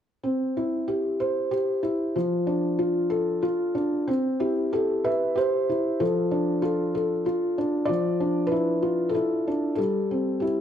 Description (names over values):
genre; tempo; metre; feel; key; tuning
children's music; 94 BPM; 3/4; rubato; C major; A4 = 440 Hz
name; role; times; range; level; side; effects
felt-muted upright piano; melody; 0.2-10.6 s; F3 to E5; -23 LUFS; equal; none
room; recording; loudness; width
moderate recital hall reverb, RT60 1.5 s; none; -23 LUFS; side -9 dB against mid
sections
0.2-4.1 A section; 4.1-10.6 B section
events
none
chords
0.2 C; 2.2 F6; 4.1 C; 6.0 F6; 7.9 Dmadd9/F; 9.8 C/G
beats
| 0.24 0.88 1.52 | 2.15 2.79 3.43 | 4.08 4.73 5.37 | 6.00 6.63 7.25 | 7.88 8.51 9.14 | 9.78 10.43